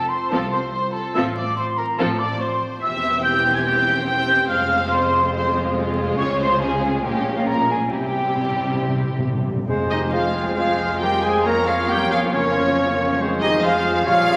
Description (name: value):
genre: classical, dramatic, fast romantic movement for symphony orchestra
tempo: 134-146 BPM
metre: 4/4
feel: rubato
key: F minor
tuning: A4 = 439 Hz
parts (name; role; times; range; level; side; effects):
- warm studio violin section; melody; 0.0-14.4 s; F4 to Bb5; -26 LUFS; equal; none
- flute section; second line; 0.0-14.4 s; F4 to Ab6; -25 LUFS; equal; none
- dark French horn section; sustained chords; 0.0-14.4 s; C4 to Bb4; -33 LUFS; equal; none
- timpani; percussion; 0.0-0.1, 7.9-10.3 s; F2 to C3; -29 LUFS; equal; none
- dark symphonic violin section; second line; 0.3-14.4 s; Bb3 to C5; -34 LUFS; equal; none
- warm symphonic viola section; accompaniment; 0.3-14.4 s; Db3 to Db4; -29 LUFS; equal; none
- dark symphonic cello section; bass; 0.3-14.4 s; C2 to Bb3; -32 LUFS; equal; none
- warm symphonic double bass section; bass; 0.3-14.4 s; E1 to F2; -33 LUFS; equal; none
- clear oboe; second line; 9.7-14.4 s; C5 to Db5; -30 LUFS; equal; none
- mellow bassoon; accompaniment; 9.7-14.4 s; G3 to Bb3; -29 LUFS; equal; none
- clear clarinet; second line; 9.9-14.4 s; Db4 to Bb4; -31 LUFS; equal; none
room: wet scoring stage reverb, RT60 1.6 s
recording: vinyl crackle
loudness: -20 LUFS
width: mono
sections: 0.0-9.7 A section; 9.7-14.4 B section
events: timpani fill 7.9-9.7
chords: 0.0 F; 1.2 F/A; 2.8 C/E; 4.5 Fm; 6.2 Dbmaj7; 7.0 Bbm7; 7.9 C; 9.7 Fm; 11.5 Bbm/F; 13.2 Fm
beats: 0.32 0.74 | 1.16 1.58 1.99 2.41 | 2.82 3.24 3.66 4.08 | 4.49 4.91 5.34 5.76 | 6.18 6.61 7.04 7.47 | 7.92 8.36 8.80 9.25 | 9.69 10.13 10.57 11.02 | 11.46 11.90 12.33 12.77 | 13.20 13.63 14.06